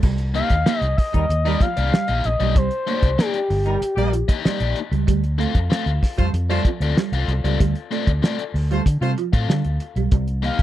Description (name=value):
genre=funk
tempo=95 BPM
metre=4/4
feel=straight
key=C dorian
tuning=A4 = 441 Hz
part: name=clean electric guitar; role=riff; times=0.0-10.6 s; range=F3 to Bb3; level=-27 LUFS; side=right 11 dB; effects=ensemble chorus
part: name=vintage muted fingered electric bass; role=bass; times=0.0-10.6 s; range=G1 to D3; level=-21 LUFS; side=equal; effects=none
part: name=cloth-damped thuddy drum kit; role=drums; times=0.0-10.6 s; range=crash cymbal, hi-hat, kick drum, snare drum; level=-18 LUFS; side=equal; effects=none
part: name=expressive portamento lead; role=melody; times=0.3-4.8, 10.4-10.6 s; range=G4 to F5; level=-24 LUFS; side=left 2 dB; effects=chorus
part: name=biting overdriven guitar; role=accompaniment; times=0.3-10.6 s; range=Bb3 to F5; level=-28 LUFS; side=left 8 dB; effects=spring reverb
part: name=warm horn section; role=second line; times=1.1-9.1 s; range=G3 to D5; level=-26 LUFS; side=left 1 dB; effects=none
room=little or no reverb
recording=dry, close 1970s-style studio recording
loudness=-18 LUFS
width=side -13 dB against mid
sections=0.0-10.6 A section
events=none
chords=0.0 Cm9; 5.1 Dm7; 10.1 Cm7